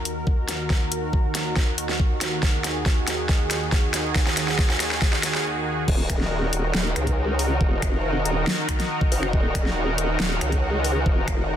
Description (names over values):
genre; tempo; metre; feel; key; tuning
heavy wobble dubstep; 139 BPM; 4/4; half-time; Eb minor; A4 = 435 Hz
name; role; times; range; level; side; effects
lush unison pad; sustained chords; 0.0-11.6 s; Eb2 to Bb4; -26 LUFS; right 1 dB; chorus, sidechain pumping
dubstep drum kit; drums; 0.1-11.4 s; crash cymbal, finger snaps, hi-hat, snare drum; -27 LUFS; equal; overdrive, high-pass filter on hats, high-pass filter on toms, high-pass filter on snare, high-pass filter on cymbals
electronic kick drum; drums; 0.3-11.4 s; none; -22 LUFS; equal; overdrive
formant-sweep wobble bass; bass; 5.9-11.6 s; Eb1 to Db2; -24 LUFS; equal; chorus, overdrive
room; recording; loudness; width
light reverb, digital ambience; dense, heavily limited modern master; -20 LUFS; side -10 dB against mid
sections
0.0-5.9 A section; 5.9-11.6 B section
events
build-up 0.0-5.9; drum fill 0.0-5.4; filter sweep on analog synth pad 0.0-5.9; break 5.4-5.9; drop 5.9-11.6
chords
0.0 Ebm